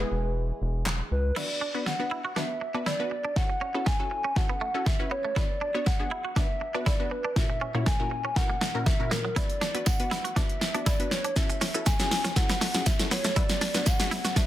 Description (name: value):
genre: dance-pop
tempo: 120 BPM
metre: 4/4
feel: straight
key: B dorian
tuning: A4 = 438 Hz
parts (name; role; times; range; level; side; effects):
- hollow clarinet-like synth lead; melody; 0.0-14.5 s; A#4 to G#5; -32 LUFS; equal; chorus
- wide unison pluck; accompaniment; 0.0-14.5 s; A#2 to D5; -35 LUFS; left 2 dB; sidechain pumping
- warm French horn section; sustained chords; 0.0-1.3 s; E3 to G#4; -39 LUFS; right 4 dB; sidechain pumping
- round analog bass; bass; 0.0-1.3 s; E1 to C#2; -28 LUFS; equal; sidechain pumping
- deep house drum kit; drums; 0.9-14.5 s; crash cymbal, handclaps, hi-hat, kick drum, shaker, snare drum; -26 LUFS; equal; none
- direct-recorded clean electric guitar; riff; 1.4-14.4 s; F#3 to F#4; -35 LUFS; right 3 dB; analog chorus
- tambourine; percussion; 9.9-14.0 s; none; -40 LUFS; right 9 dB; none
room: light reverb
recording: dense, heavily limited modern master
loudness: -25 LUFS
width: side -13 dB against mid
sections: 0.0-1.4 A section; 1.4-14.5 B section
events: build-up 1.4-14.5; drum fill 1.4-14.5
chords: 0.0 E; 1.4 Bm; 3.4 F#m7; 5.4 Bm; 7.4 F#7/A#; 9.4 Bm; 11.4 F#m7; 13.4 Bm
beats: 0.36 0.86 | 1.36 1.86 2.36 2.86 | 3.36 3.86 4.36 4.86 | 5.36 5.86 6.36 6.86 | 7.36 7.86 8.36 8.86 | 9.36 9.86 10.36 10.86 | 11.36 11.86 12.36 12.86 | 13.36 13.86 14.36